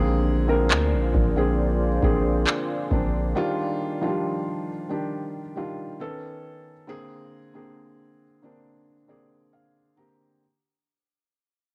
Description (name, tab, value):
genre	contemporary R&B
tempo	68 BPM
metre	4/4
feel	straight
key	unclear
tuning	A4 = 440 Hz
part	felt-muted upright piano	accompaniment	0.0-10.4 s	D3 to Bb5	-29 LUFS	equal	cassette tape
part	deep dark ambient pad	sustained chords	0.0-3.3 s	Bb3 to D5	-35 LUFS	equal	chorus, built-in reverb, cassette tape
part	long sustained 808-style bass	bass	0.0-3.3 s	Bb1 to D2	-26 LUFS	equal	none
part	booming analog drum machine	drums	0.7-3.1 s	handclaps, kick drum	-27 LUFS	equal	cassette tape
room	light reverb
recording	home recording on cassette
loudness	-24 LUFS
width	mono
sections	0.0-10.4 A section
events	fade-out 0.0-10.4; felt piano fill 8.6-10.4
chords	0.0 Bb9; 3.4 Ebmaj9; 6.0 B9; 6.9 Bb9